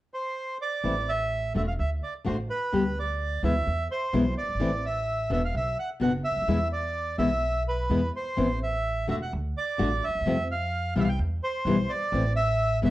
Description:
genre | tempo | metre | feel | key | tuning
tango | 128 BPM | 4/4 | rubato | A minor | A4 = 440 Hz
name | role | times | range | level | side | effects
bandoneon | melody | 0.1-12.9 s | B4 to G5 | -29 LUFS | right 2 dB | none
nylon-string guitar | accompaniment | 0.8-12.9 s | B2 to G4 | -27 LUFS | left 2 dB | none
upright bass | bass | 0.8-12.9 s | E1 to F2 | -30 LUFS | right 1 dB | transformer saturation
room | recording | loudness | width
moderate large studio reverb, RT60 0.8 s | worn, warbling old tape, cassette tape, warbly pitch drift | -25 LUFS | side -16 dB against mid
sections
0.8-12.9 A section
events
none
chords
0.0 N.C.; 0.8 A5; 1.8 D5; 2.7 G/D; 3.7 E; 4.6 A5; 5.5 Bm; 6.5 E; 8.4 Am; 9.3 D5; 10.3 F5; 11.2 E5; 12.1 A5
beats
0.37 | 0.85 1.32 1.80 2.27 | 2.74 3.20 3.67 4.14 | 4.61 5.08 5.54 6.01 | 6.49 6.96 7.43 7.91 | 8.38 8.85 9.32 9.79 | 10.27 10.73 11.20 11.67 | 12.13 12.60

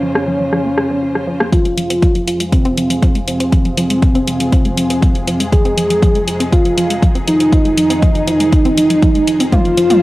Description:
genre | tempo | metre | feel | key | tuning
melodic techno | 120 BPM | 4/4 | straight | F minor | A4 = 441 Hz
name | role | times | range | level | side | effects
fat analog lead | melody | 0.0-10.0 s | C4 to Ab4 | -15 LUFS | equal | chorus, cassette tape, tape echo
bright studio string section | sustained chords | 0.0-10.0 s | F2 to C5 | -27 LUFS | left 1 dB | vintage 12-bit sampler grit, sidechain pumping, low-pass filter, cassette tape
analog pluck | arpeggios | 0.0-9.9 s | F3 to C5 | -21 LUFS | equal | chorus, sidechain pumping, cassette tape, analog delay
analog drone | drone | 0.4-10.0 s | F2 to F3 | -28 LUFS | equal | chorus, sidechain pumping, cassette tape
house drum kit | drums | 0.2-10.0 s | hi-hat, rim click, toms | -20 LUFS | left 1 dB | overdrive, low-pass filter on snare, studio reverb, sidechain pumping on hats, low-pass filter on hats, sidechain pumping on toms, low-pass filter on toms
electronic kick drum | drums | 1.5-9.6 s | none | -12 LUFS | equal | overdrive, studio reverb
room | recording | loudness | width
light reverb | home recording on cassette | -11 LUFS | side -18 dB against mid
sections
0.0-1.5 A section; 1.5-10.0 B section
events
filter sweep on analog synth lead 0.0-1.5, 1.5-10.0; build-up 1.5-10.0; filter sweep on string section 1.5-10.0; drum fill 9.5-10.0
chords
0.0 Bbmadd9/F; 1.5 Fm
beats
0.03 0.53 1.03 | 1.53 2.03 2.53 3.03 | 3.53 4.03 4.53 5.03 | 5.53 6.03 6.53 7.03 | 7.53 8.03 8.53 9.03 | 9.53

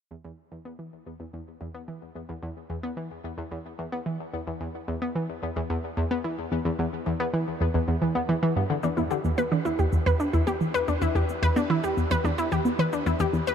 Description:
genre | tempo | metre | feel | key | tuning
ambient, sequencer-driven space music | 110 BPM | 4/4 | straight | E minor | A4 = 439 Hz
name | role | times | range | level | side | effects
analog pluck | riff | 0.1-13.4 s | E2 to B3 | -26 LUFS | equal | chorus, ping-pong delay
wide unison pluck | arpeggios | 8.8-13.5 s | D4 to B4 | -26 LUFS | moving between left 4 dB and right 2 dB | auto-pan, ping-pong delay, shimmer reverb
cabasa and congas | percussion | 8.8-13.5 s | none | -52 LUFS | equal | ping-pong delay
room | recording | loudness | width
moderate huge ambient reverb, RT60 8.6 s | none | -24 LUFS | side -8 dB against mid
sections
0.1-8.8 A section; 8.8-13.5 B section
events
fade-in on synth arpeggio sound 0.1-8.8; filter sweep on synth arpeggio sound 8.8-13.5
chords
0.1 E5; 8.8 Em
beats
| 0.11 0.65 1.20 1.74 | 2.29 2.83 3.38 3.93 | 4.47 5.02 5.56 6.11 | 6.65 7.20 7.74 8.29 | 8.84 9.38 9.93 10.47 | 11.02 11.56 12.11 12.65 | 13.20

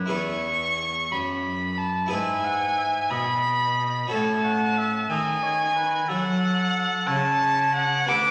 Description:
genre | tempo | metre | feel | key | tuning
classical, baroque-style sonata movement with continuo | 60 BPM (dotted quarters) | 12/8 | straight | unclear | A4 = 436 Hz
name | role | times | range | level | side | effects
warm oboe | second line | 0.0-8.3 s | A4 to F#5 | -31 LUFS | equal | none
harpsichord | accompaniment | 0.0-8.3 s | D2 to B4 | -32 LUFS | equal | none
rich cello | bass | 0.0-8.3 s | D2 to F#3 | -33 LUFS | equal | none
rich violin | melody | 0.1-8.3 s | F#5 to D6 | -26 LUFS | equal | none
room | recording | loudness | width
wet recital hall reverb, RT60 1.5 s | nothing above 10.4 kHz | -24 LUFS | mono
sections
0.1-8.3 A section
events
none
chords
0.1 E; 2.1 E/G#; 4.1 F#m/A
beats
| 0.10 1.11 2.11 3.11 | 4.11 5.10 6.09 7.08 | 8.10

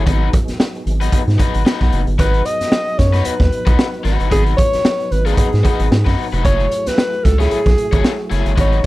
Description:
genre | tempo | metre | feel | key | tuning
funk | 113 BPM | 4/4 | swing 56% on 16ths | unclear | A4 = 441 Hz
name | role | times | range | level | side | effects
percussive tonewheel organ | sustained chords | 0.0-8.9 s | F#3 to B4 | -28 LUFS | right 1 dB | chorus vibrato, fast rotary speaker
round analog bass | bass | 0.0-8.8 s | E#1 to G#2 | -16 LUFS | equal | none
crunchy overdriven guitar | accompaniment | 0.1-8.8 s | G#3 to C#5 | -23 LUFS | left 7 dB | none
raw garage drum kit | drums | 0.1-8.9 s | hi-hat, kick drum, snare drum | -17 LUFS | equal | none
breathy alto saxophone | melody | 2.2-8.9 s | G#4 to D#5 | -19 LUFS | equal | slapback echo
room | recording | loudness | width
little or no reverb | none | -13 LUFS | side -18 dB against mid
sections
0.0-8.9 A section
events
none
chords
0.1 G#m7; 6.4 F#m9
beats
| 0.07 0.60 1.13 1.66 | 2.19 2.73 3.26 3.79 | 4.32 4.85 5.38 5.92 | 6.45 6.98 7.51 8.04 | 8.57

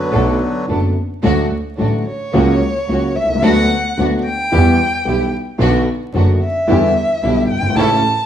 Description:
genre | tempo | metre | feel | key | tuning
tango | 110 BPM | 4/4 | rubato | D major | A4 = 441 Hz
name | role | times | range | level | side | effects
bandoneon | melody | 0.0-0.7 s | D3 to B3 | -20 LUFS | left 1 dB | none
warm violin | second line | 0.0-8.3 s | B4 to A5 | -19 LUFS | equal | none
warm concert grand piano | accompaniment | 0.1-8.0 s | F#1 to G4 | -17 LUFS | equal | none
rich symphonic string section | stabs | 0.1-8.0 s | A3 to A4 | -22 LUFS | right 2 dB | none
clear double bass | bass | 0.1-8.0 s | F#1 to E2 | -19 LUFS | right 1 dB | none
room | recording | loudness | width
wet large studio reverb, RT60 0.9 s | band playing live in one room, vinyl crackle | -13 LUFS | side -10 dB against mid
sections
0.0-1.2 A section; 1.2-8.3 B section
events
violin solo 1.2-8.3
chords
0.0 Bm7; 1.2 D; 2.3 F#/C#; 3.4 Bm/D; 4.5 Em; 5.6 Bm; 6.7 Em7; 7.8 A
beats
0.13 0.68 | 1.24 1.79 2.34 2.89 | 3.44 3.98 4.52 5.06 | 5.60 6.14 6.68 7.22 | 7.76

